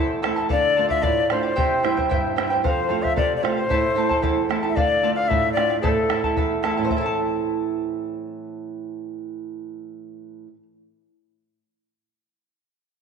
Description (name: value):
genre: andean folk, Andean ensemble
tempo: 112 BPM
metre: 2/4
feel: straight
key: A minor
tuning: A4 = 440 Hz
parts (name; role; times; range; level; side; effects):
- bright large quena; melody; 0.0-6.3 s; A4 to F5; -22 LUFS; left 4 dB; none
- charango; accompaniment; 0.0-10.6 s; E4 to A5; -25 LUFS; equal; none
- flamenco guitar; accompaniment; 0.0-10.6 s; E2 to A5; -26 LUFS; right 7 dB; none
- bombo; percussion; 0.2-7.2 s; none; -27 LUFS; left 1 dB; none
room: wet echo chamber reverb, RT60 1.9 s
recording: 1960s-style stereo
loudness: -19 LUFS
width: side -6 dB against mid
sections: 0.0-6.9 A section; 6.9-9.1 B section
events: none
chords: 0.0 Am; 0.5 Dm; 1.6 C; 2.6 F; 3.7 Am; 4.8 Dm; 5.8 Am